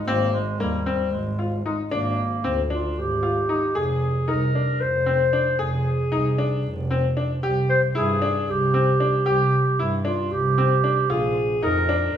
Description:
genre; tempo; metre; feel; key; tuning
contemporary instrumental, chamber music in an uneven meter; 228 BPM (eighths); 7/8; straight; unclear; A4 = 440 Hz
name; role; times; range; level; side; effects
mellow clarinet; melody; 0.0-12.2 s; G3 to C5; -23 LUFS; right 1 dB; none
bright grand piano; arpeggios; 0.1-12.2 s; Bb3 to Ab4; -26 LUFS; left 4 dB; none
dark double bass; bass; 0.1-12.2 s; F1 to G2; -24 LUFS; right 1 dB; none
room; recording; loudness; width
moderate recital hall reverb, RT60 1.6 s; small room ambience; -20 LUFS; side -9 dB against mid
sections
0.0-3.8 A section; 3.8-12.2 B section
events
none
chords
0.1 Ab; 1.9 Gm/Ab; 3.8 Fm; 7.4 C5; 11.1 Bbsus4

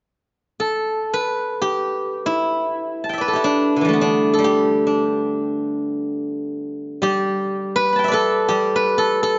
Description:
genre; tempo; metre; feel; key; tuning
chinese traditional, Chinese solo plucked strings; free time; none; none; G gong mode; A4 = 436 Hz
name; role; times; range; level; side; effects
steel-string zither; solo; 0.6-9.4 s; D3 to B5; -20 LUFS; equal; none
room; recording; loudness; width
moderate concert hall reverb, RT60 2.2 s; nothing above 7.6 kHz; -20 LUFS; mono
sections
0.0-7.0 A section; 7.0-9.4 B section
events
none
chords
none

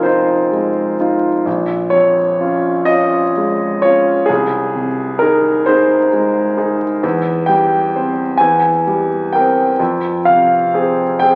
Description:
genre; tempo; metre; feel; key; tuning
classical, romantic nocturne for solo piano; 43 BPM (dotted quarters); 6/8; rubato; Ab major; A4 = 440 Hz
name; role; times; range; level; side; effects
clear grand piano; solo; 0.0-11.4 s; Bb1 to Ab5; -15 LUFS; equal; none
room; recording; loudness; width
wet recital hall reverb, RT60 1.4 s; very old 78 rpm record, vinyl crackle; -15 LUFS; mono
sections
0.0-11.4 A section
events
none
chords
0.0 Fm7; 1.5 Bbm7; 4.3 Ab/C; 7.0 C/E; 8.4 C7/E; 9.8 Fm

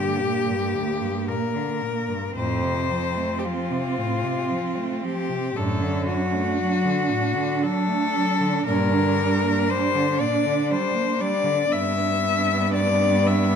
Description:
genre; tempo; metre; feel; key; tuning
classical, lyrical piece for cello ensemble; 58 BPM; 3/4; rubato; G minor; A4 = 439 Hz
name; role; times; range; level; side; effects
clear cello; melody; 0.0-13.6 s; F4 to E5; -24 LUFS; left 6 dB; none
warm cello; second line; 0.0-13.6 s; Bb3 to D4; -27 LUFS; right 10 dB; none
rich cello; accompaniment; 0.0-13.6 s; D2 to B3; -27 LUFS; left 1 dB; none
clear cello; bass; 0.0-13.6 s; F2 to G2; -26 LUFS; right 2 dB; none
room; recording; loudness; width
wet recital hall reverb, RT60 1.7 s; none; -21 LUFS; side -7 dB against mid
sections
0.0-13.6 A section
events
none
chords
0.0 Gm; 2.4 F; 5.6 D/F#; 8.7 Gm; 11.7 G

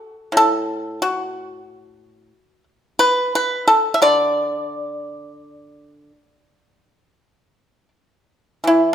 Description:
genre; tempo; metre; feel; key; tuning
chinese traditional, Chinese solo plucked strings; 80-92 BPM; 4/4; rubato; D gong mode; A4 = 440 Hz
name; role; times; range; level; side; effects
pipa; solo; 0.0-8.9 s; A2 to E5; -16 LUFS; equal; none
room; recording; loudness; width
moderate recital hall reverb, RT60 1.4 s; minimal, uncompressed stereo recording; -16 LUFS; side -9 dB against mid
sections
0.0-8.7 A section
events
none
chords
none

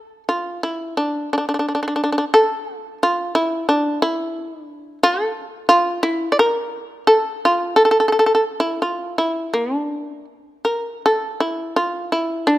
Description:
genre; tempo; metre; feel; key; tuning
japanese traditional, Japanese chamber music; 79-91 BPM; 4/4; rubato; A miyako bushi; A4 = 440 Hz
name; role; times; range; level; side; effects
shamisen; solo; 0.0-12.6 s; D4 to D5; -17 LUFS; equal; none
room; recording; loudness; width
light reverb; close, detailed microphones; -17 LUFS; side -15 dB against mid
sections
0.0-12.6 A section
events
none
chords
none

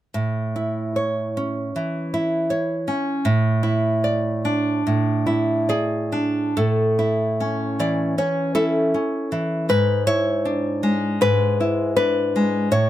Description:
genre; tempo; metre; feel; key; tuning
romantic piece for solo classical guitar; 65-82 BPM; 4/4; rubato; A major; A4 = 441 Hz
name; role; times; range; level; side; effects
nylon-string guitar; solo; 0.1-12.9 s; G#2 to D5; -19 LUFS; equal; none
room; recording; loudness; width
little or no reverb; close, detailed microphones; -19 LUFS; side -13 dB against mid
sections
0.2-6.6 A section; 6.6-12.9 B section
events
none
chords
0.2 A; 3.3 E7/A; 6.6 A; 9.7 E7/G#

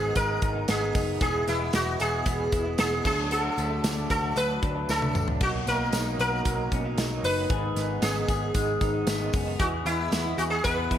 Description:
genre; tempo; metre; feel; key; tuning
jangly indie pop; 114 BPM; 4/4; straight; unclear; A4 = 440 Hz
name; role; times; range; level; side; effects
sitar; melody; 0.0-11.0 s; E4 to B4; -28 LUFS; equal; none
electric guitar through a small old amp; accompaniment; 0.0-11.0 s; G#2 to E4; -36 LUFS; right 5 dB; tremolo
electric guitar through a small old amp; arpeggios; 0.0-11.0 s; G#2 to G#4; -32 LUFS; left 2 dB; wide subtle chorus
vintage muted picked electric bass; bass; 0.0-11.0 s; E1 to E2; -32 LUFS; equal; none
modern studio drum kit; drums; 0.2-11.0 s; crash cymbal, hi-hat, kick drum, snare drum, toms; -30 LUFS; equal; none
tambourine; percussion; 0.2-10.8 s; none; -44 LUFS; left 5 dB; none
room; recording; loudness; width
moderate lush hall reverb, RT60 1.7 s, small room ambience; bright 1980s-style digital production, vinyl crackle; -24 LUFS; side -10 dB against mid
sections
0.0-11.0 A section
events
drum fill 4.9-5.4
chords
0.0 G#m; 1.2 E; 3.0 D; 5.4 Bmaj7; 7.5 G#m; 9.6 E

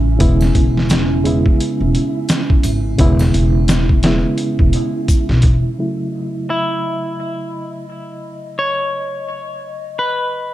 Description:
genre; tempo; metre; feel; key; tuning
trip hop; 86 BPM; 4/4; swing 59% on 16ths; F# dorian; A4 = 440 Hz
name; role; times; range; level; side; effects
bright reed electric piano; accompaniment; 0.0-10.5 s; C#3 to E4; -20 LUFS; right 1 dB; overdrive, harmonic tremolo, low-pass filter, tape echo
warbly tape-like pad; sustained chords; 0.0-10.5 s; C#4 to D#5; -26 LUFS; right 1 dB; chorus, built-in reverb
upright bass; bass; 0.0-5.6 s; E1 to B1; -16 LUFS; equal; tube saturation
flickering grainy texture; texture; 0.0-5.8 s; E4; -30 LUFS; right 7 dB; built-in reverb
trip hop sampler-style drum kit; drums; 0.2-5.6 s; hi-hat, kick drum, snare drum; -15 LUFS; equal; studio reverb
triangle and tube shaker; percussion; 0.4-5.3 s; none; -36 LUFS; left 4 dB; none
semi-hollow electric guitar; melody; 6.5-10.5 s; E4 to C#5; -21 LUFS; left 1 dB; tape echo
room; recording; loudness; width
little or no reverb; dark, warm production; -14 LUFS; side -14 dB against mid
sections
0.0-5.8 A section; 5.8-10.5 B section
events
none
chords
0.2 C#m7/E; 5.8 F#m7

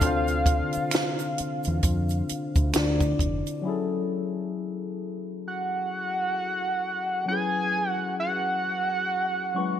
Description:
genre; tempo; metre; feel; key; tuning
R&B, neo-soul; 66 BPM; 4/4; swing 59% on 16ths; F# minor; A4 = 440 Hz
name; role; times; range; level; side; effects
fat analog lead; melody; 0.0-9.8 s; F5 to G#5; -27 LUFS; right 1 dB; chorus
barky tine electric piano; accompaniment; 0.0-9.8 s; D3 to C#6; -30 LUFS; left 4 dB; overdrive, lush chorus
deep dub fingered electric bass; bass; 0.0-3.4 s; F1 to F2; -27 LUFS; equal; none
compact cocktail drum kit; drums; 0.0-3.6 s; hi-hat, kick drum, snare drum; -26 LUFS; equal; gated reverb
egg shaker and finger snaps; percussion; 0.0-3.6 s; none; -37 LUFS; right 6 dB; none
room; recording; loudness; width
light reverb, studio reverb; bright 1980s-style digital production; -24 LUFS; side -10 dB against mid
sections
0.0-3.6 A section; 3.6-9.8 B section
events
tine electric piano fill 9.1-9.8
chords
0.0 Dm9; 3.6 F#m9

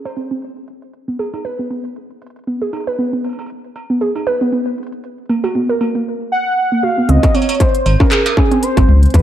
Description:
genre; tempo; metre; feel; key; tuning
IDM; 117 BPM; 4/4; swing 56% on 16ths; Db mixolydian; A4 = 440 Hz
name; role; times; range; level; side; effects
warbly dusty pluck; arpeggios; 0.1-8.8 s; Bb3 to C5; -18 LUFS; right 2 dB; chorus, ping-pong delay
industrial drum kit; drums; 0.1-9.2 s; handclaps, hi-hat, struck metal, toms; -24 LUFS; right 2 dB; overdrive, low-pass filter on hats, low-pass filter on snare, low-pass filter on toms, low-pass filter on perc
warm velvety synth lead; melody; 6.3-9.2 s; Ab4 to Gb5; -17 LUFS; equal; chorus, ping-pong delay
dark detuned saw bass; bass; 7.1-9.2 s; Ab1 to E2; -10 LUFS; equal; tube saturation
electronic kick drum; drums; 7.2-9.2 s; none; -14 LUFS; equal; distortion, overdrive
room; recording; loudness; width
moderate plate reverb, RT60 2.0 s; dark, warm production; -14 LUFS; side -11 dB against mid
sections
0.0-7.1 A section; 7.1-9.2 B section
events
none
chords
0.0 N.C.; 0.9 Cb5; 7.1 Db5

